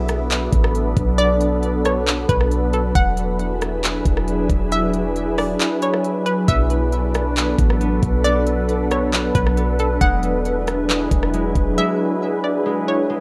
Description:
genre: hip hop, atmospheric cloud-rap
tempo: 136 BPM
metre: 4/4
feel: half-time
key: B dorian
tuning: A4 = 438 Hz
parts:
  - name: hollow square pluck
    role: melody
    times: 0.0-13.2 s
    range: A4 to F#5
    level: -26 LUFS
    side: equal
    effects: chorus, tape echo
  - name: glassy FM pad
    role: sustained chords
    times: 0.0-13.2 s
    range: F#3 to B4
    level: -23 LUFS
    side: equal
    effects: ensemble chorus, built-in reverb, sidechain pumping
  - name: warm 808-style bass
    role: bass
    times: 0.0-11.8 s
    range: E1 to B1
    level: -24 LUFS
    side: equal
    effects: none
  - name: trap drum kit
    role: drums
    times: 0.1-11.7 s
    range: handclaps, hi-hat, kick drum, rim click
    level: -24 LUFS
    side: equal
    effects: overdrive
  - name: concert harp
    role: arpeggios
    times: 6.5-13.2 s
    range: G#3 to B3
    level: -32 LUFS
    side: equal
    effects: tape echo
room: digital ambience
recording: rough home demo mix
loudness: -19 LUFS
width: mono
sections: 0.0-13.2 A section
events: kick muted 5.6-6.5; drums muted 11.8-13.2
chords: 0.0 Bm7; 3.0 E9; 6.5 Bm7; 10.0 E9

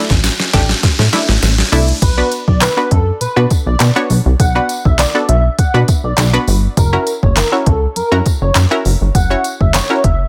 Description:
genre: dance-pop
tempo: 101 BPM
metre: 4/4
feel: straight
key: B minor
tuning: A4 = 440 Hz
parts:
  - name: analog pluck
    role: accompaniment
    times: 0.0-10.3 s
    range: A3 to C#5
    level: -20 LUFS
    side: equal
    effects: chorus, sidechain pumping
  - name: riser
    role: sound effects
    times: 0.0-2.0 s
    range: none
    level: -25 LUFS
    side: equal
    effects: none
  - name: plucky analog bass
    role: bass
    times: 0.1-10.2 s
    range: F#1 to B2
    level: -16 LUFS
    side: equal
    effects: sidechain pumping
  - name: smooth R&B drum kit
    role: drums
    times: 0.1-10.2 s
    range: crash cymbal, handclaps, hi-hat, kick drum, snare drum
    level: -17 LUFS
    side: equal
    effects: overdrive
  - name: tambourine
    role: percussion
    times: 0.2-9.9 s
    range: none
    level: -31 LUFS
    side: equal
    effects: none
  - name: airy dreamy lead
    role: melody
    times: 2.0-10.2 s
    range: A4 to F#5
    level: -22 LUFS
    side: equal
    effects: chorus, tape echo
room: digital ambience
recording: none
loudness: -13 LUFS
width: mono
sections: 0.0-2.0 A section; 2.0-10.3 B section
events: build-up 0.0-2.0; drum fill 0.0-2.0; riser 0.0-2.0; filter sweep on synth pluck 0.0-2.0; drop 2.0-10.3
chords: 0.0 Asus4; 2.0 Bm; 6.8 F#7

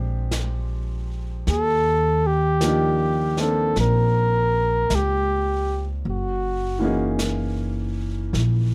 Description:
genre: jazz ballad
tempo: 52 BPM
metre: 4/4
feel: swing 66% on 8ths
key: unclear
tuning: A4 = 440 Hz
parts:
  - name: clear concert grand piano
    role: accompaniment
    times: 0.0-8.7 s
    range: Fb3 to Ab4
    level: -30 LUFS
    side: equal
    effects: none
  - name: upright bass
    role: bass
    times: 0.0-8.7 s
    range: Gb1 to Eb2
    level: -26 LUFS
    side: equal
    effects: none
  - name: jazz brush drum kit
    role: drums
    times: 0.3-8.7 s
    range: brushed snare drum, hi-hat, snare drum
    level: -35 LUFS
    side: equal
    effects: none
  - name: mellow flugelhorn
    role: melody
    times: 1.5-7.2 s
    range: Gb4 to Bb4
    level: -24 LUFS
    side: equal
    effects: none
room: little or no reverb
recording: close, detailed microphones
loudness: -22 LUFS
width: mono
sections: 0.0-8.7 A section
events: none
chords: 0.0 Bb13; 1.5 Ebmaj7; 6.0 Gb13

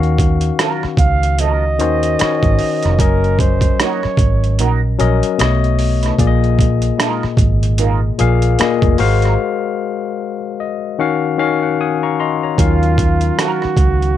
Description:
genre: R&B, neo-soul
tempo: 75 BPM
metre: 4/4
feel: swing 59% on 16ths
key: Eb dorian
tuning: A4 = 442 Hz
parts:
  - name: barky tine electric piano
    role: accompaniment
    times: 0.0-14.2 s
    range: Bb2 to Eb6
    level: -18 LUFS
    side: left 8 dB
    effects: none
  - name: vintage muted fingered electric bass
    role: bass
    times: 0.0-14.2 s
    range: F1 to Eb2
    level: -16 LUFS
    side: right 1 dB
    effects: none
  - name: boom bap sampler-style drum kit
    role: drums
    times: 0.0-14.2 s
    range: hi-hat, kick drum, rim click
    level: -17 LUFS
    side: right 1 dB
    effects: overdrive
  - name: mellow electric guitar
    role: second line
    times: 0.6-13.6 s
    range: Gb3 to B4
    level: -22 LUFS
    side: right 9 dB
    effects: wah
  - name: warm flugelhorn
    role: melody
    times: 1.0-4.6, 12.6-14.2 s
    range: F4 to F5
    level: -19 LUFS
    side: right 5 dB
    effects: slapback echo
room: light reverb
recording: dark, warm production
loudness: -13 LUFS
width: side -11 dB against mid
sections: 0.0-12.6 A section; 12.6-14.2 A section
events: break 9.4-12.6; tine electric piano fill 10.2-12.6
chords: 0.0 Ebm9; 3.0 Gb6; 5.4 B9; 6.2 Bb7sus4; 9.0 Ab13; 11.0 Ebm9

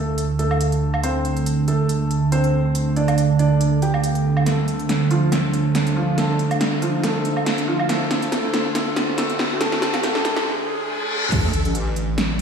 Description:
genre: heavy wobble dubstep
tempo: 140 BPM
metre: 4/4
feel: swing 54% on 16ths, half-time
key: D minor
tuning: A4 = 440 Hz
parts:
  - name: felt-muted upright piano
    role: melody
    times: 0.0-10.4 s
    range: F3 to G5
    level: -25 LUFS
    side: equal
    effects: low-pass filter, tape echo
  - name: lush unison pad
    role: sustained chords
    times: 0.0-12.4 s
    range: D2 to C5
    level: -21 LUFS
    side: right 3 dB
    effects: chorus, sidechain pumping
  - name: riser, reverse cymbal and sub drop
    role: sound effects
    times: 0.8-12.4 s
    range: none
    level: -30 LUFS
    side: equal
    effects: none
  - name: big-room dance drum kit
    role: drums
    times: 0.2-12.4 s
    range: crash cymbal, hi-hat, snare drum, woodblock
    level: -24 LUFS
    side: equal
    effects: overdrive
  - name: wobble bass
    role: bass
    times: 11.3-12.4 s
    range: A1 to D2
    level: -22 LUFS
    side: equal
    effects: chorus, overdrive
  - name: electronic kick drum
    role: drums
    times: 11.3-11.4 s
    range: none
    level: -23 LUFS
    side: equal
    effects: overdrive
room: wet lush hall reverb, RT60 1.6 s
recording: dreamy mix soaked in reverb, high-pass filter, studio ambience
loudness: -18 LUFS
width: side -6 dB against mid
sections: 0.0-11.3 A section; 11.3-12.4 B section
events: build-up 0.0-11.3; filter sweep on analog synth pad 0.0-11.3; filter sweep 0.0-11.3; drum fill 4.5-10.5; break 10.5-11.3; reverse cymbal 10.5-11.3; drop 11.3-12.4; impact 11.3-12.4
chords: 0.0 D5

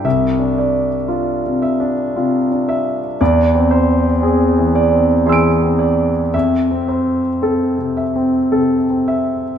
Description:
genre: classical, impressionist solo piano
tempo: 52-59 BPM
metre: 3/4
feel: rubato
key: unclear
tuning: A4 = 438 Hz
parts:
  - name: warm concert grand piano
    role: solo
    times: 0.0-9.6 s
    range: C2 to D7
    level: -14 LUFS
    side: equal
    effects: none
room: wet recital hall reverb, RT60 1.9 s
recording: nothing above 10.5 kHz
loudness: -13 LUFS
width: side -8 dB against mid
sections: 0.0-9.6 A section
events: none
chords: 0.1 Dm9/C; 3.2 Eaug7; 6.3 Fmaj7

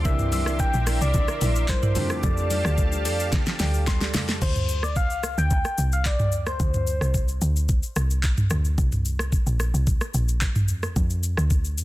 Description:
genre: amapiano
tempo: 110 BPM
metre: 4/4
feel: straight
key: unclear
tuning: A4 = 441 Hz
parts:
  - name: clear grand piano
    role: accompaniment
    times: 0.0-4.4 s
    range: D3 to C6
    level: -34 LUFS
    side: left 2 dB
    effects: none
  - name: warm analog pad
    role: sustained chords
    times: 0.0-4.4 s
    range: G4 to D6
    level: -34 LUFS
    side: right 1 dB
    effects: chorus, sidechain pumping
  - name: woody log drum bass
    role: bass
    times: 0.0-11.8 s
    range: Bb1 to F2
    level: -24 LUFS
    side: equal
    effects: none
  - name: soft struck synth lead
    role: melody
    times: 0.1-7.6 s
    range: C5 to G5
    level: -29 LUFS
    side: left 2 dB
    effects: chorus, ping-pong delay
  - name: marimba with medium mallets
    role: stabs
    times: 0.1-4.1 s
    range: E4 to D5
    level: -34 LUFS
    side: right 7 dB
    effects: ping-pong delay
  - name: smooth R&B drum kit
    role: drums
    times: 0.1-11.8 s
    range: crash cymbal, handclaps, hi-hat, kick drum, rim click, shaker, snare drum, toms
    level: -24 LUFS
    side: equal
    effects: none
  - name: congas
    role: percussion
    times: 0.1-4.3 s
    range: none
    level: -34 LUFS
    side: left 1 dB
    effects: none
room: digital ambience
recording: dense, heavily limited modern master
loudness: -21 LUFS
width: side -17 dB against mid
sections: 0.0-4.4 A section; 4.4-11.8 B section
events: drop 0.0-4.4; drum fill 3.3-4.4; grand piano fill 3.3-4.4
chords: 0.1 C9; 2.0 F69; 4.4 Csus2; 8.8 Bbsus2; 10.7 Dm

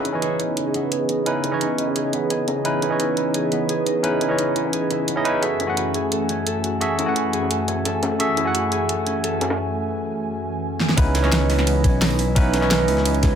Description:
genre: liquid drum and bass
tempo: 173 BPM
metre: 4/4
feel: straight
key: C# minor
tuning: A4 = 440 Hz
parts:
  - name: barky tine electric piano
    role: accompaniment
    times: 0.0-13.4 s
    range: E3 to G#5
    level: -23 LUFS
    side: right 1 dB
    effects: medium stereo tremolo, digital delay
  - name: airy breathy pad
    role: sustained chords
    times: 0.0-13.4 s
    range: F#2 to G#5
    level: -27 LUFS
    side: equal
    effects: chorus
  - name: concert harp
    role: arpeggios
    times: 0.0-13.4 s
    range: B3 to A4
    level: -26 LUFS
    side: right 1 dB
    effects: low-pass filter, dub echo
  - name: breakbeat sampler-style drum kit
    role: drums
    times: 0.1-13.3 s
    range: hi-hat, ride cymbal, snare drum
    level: -31 LUFS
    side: right 1 dB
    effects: high-pass filter on snare, low-pass filter on snare, high-pass filter on cymbals, low-pass filter on cymbals, high-pass filter on hats, low-pass filter on hats
  - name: pop drum kit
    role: drums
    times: 0.1-13.3 s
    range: hi-hat, snare drum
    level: -25 LUFS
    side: equal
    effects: none
  - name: smooth gliding synth bass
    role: bass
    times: 11.0-13.4 s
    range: B1 to C#2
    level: -21 LUFS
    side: equal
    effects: none
  - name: electronic kick drum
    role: drums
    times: 11.0-13.3 s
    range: none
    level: -18 LUFS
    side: equal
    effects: none
room: moderate plate reverb, RT60 1.2 s, digital ambience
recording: none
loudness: -19 LUFS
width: side -8 dB against mid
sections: 0.0-11.0 A section; 11.0-13.4 B section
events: filter sweep on analog synth pad 0.0-11.0; filter sweep on harp 0.0-11.0; break 9.6-11.0; drum fill 10.8; drop 11.0-13.4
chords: 0.0 C#m9; 5.4 F#m9; 11.0 C#m9

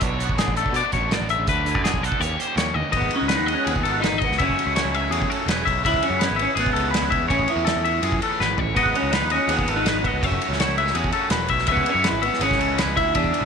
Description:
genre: math rock and midwest emo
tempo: 164 BPM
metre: 4/4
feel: straight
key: unclear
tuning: A4 = 441 Hz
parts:
  - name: twangy electric guitar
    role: accompaniment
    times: 0.0-13.4 s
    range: D2 to B4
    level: -30 LUFS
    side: right 13 dB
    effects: ensemble chorus
  - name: twangy electric guitar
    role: arpeggios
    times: 0.0-13.4 s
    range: G#4 to E5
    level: -24 LUFS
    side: left 10 dB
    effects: none
  - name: overdriven electric guitar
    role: riff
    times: 0.0-13.4 s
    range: F#2 to G#4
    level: -31 LUFS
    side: right 12 dB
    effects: none
  - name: modern bright picked electric bass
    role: bass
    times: 0.0-13.4 s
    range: E1 to B2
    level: -27 LUFS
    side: right 1 dB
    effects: none
  - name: loose indie drum kit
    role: drums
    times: 0.0-13.4 s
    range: hi-hat, kick drum, ride cymbal, snare drum, toms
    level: -25 LUFS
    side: right 1 dB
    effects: none
  - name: electric guitar through a small old amp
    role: melody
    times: 3.0-13.4 s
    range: B3 to E4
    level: -25 LUFS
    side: equal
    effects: none
room: light reverb, small room ambience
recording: 1960s-style stereo with parts hard left and right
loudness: -19 LUFS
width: side -6 dB against mid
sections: 0.0-2.9 A section; 2.9-13.4 B section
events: drum fill 2.7, 8.4-8.8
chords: 0.0 Bm9; 1.5 D69; 2.2 Eb7; 2.9 G#m7; 4.4 F#m7; 5.8 C#m7; 8.8 G#m7; 10.2 F#m7; 11.7 C#m7

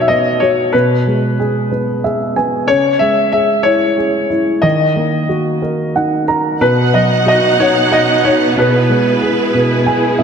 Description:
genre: six-eight pop ballad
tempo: 61 BPM (dotted quarters)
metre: 6/8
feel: straight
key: unclear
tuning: A4 = 440 Hz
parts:
  - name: clear concert grand piano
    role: melody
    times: 0.0-9.8 s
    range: B4 to E5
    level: -15 LUFS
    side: left 2 dB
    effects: none
  - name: dark upright piano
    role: accompaniment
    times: 0.0-10.2 s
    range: B2 to A#5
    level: -15 LUFS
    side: right 1 dB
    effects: none
  - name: warm studio string section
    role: sustained chords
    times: 6.6-10.2 s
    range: B2 to F#5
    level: -15 LUFS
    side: right 2 dB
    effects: none
room: wet lush hall reverb, RT60 2.6 s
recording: dreamy mix soaked in reverb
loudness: -11 LUFS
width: side -6 dB against mid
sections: 0.0-10.2 A section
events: upright piano fill 1.7-2.7, 5.6-6.6, 9.5-10.2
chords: 0.0 B; 0.7 E/B; 2.7 C#m; 4.6 D#m; 6.6 B; 8.6 E/B

